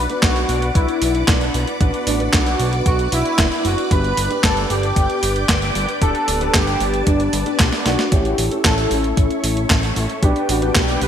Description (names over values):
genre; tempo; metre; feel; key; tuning
italo disco; 114 BPM; 4/4; straight; unclear; A4 = 440 Hz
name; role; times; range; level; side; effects
analog synth brass; melody; 0.0-11.1 s; C#4 to B4; -21 LUFS; equal; chorus, ping-pong delay
string machine, full ensemble; sustained chords; 0.0-11.1 s; A4 to D6; -26 LUFS; equal; ensemble chorus
dark grand piano; stabs; 0.0-11.1 s; B3 to C#5; -27 LUFS; left 2 dB; ensemble chorus, low-pass filter
fat analog bass; bass; 0.0-11.1 s; D1 to B1; -22 LUFS; equal; none
clean 12-bit digital drum machine; drums; 0.1-11.1 s; handclaps, hi-hat, snare drum; -21 LUFS; equal; overdrive, gated reverb
electronic kick drum; drums; 0.2-10.9 s; none; -18 LUFS; equal; overdrive
room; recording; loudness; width
moderate lush hall reverb, RT60 1.9 s; bright 1980s-style digital production; -15 LUFS; side -9 dB against mid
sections
0.0-8.1 A section; 8.1-11.1 B section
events
drum fill 7.7-8.1; filter sweep on grand piano 8.1-11.1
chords
0.0 Bm; 3.9 G; 8.1 A; 10.2 G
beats
0.23 0.75 1.28 | 1.80 2.33 2.86 3.38 | 3.91 4.44 4.96 5.49 | 6.02 6.54 7.07 7.59 | 8.12 8.65 9.17 9.70 | 10.23 10.75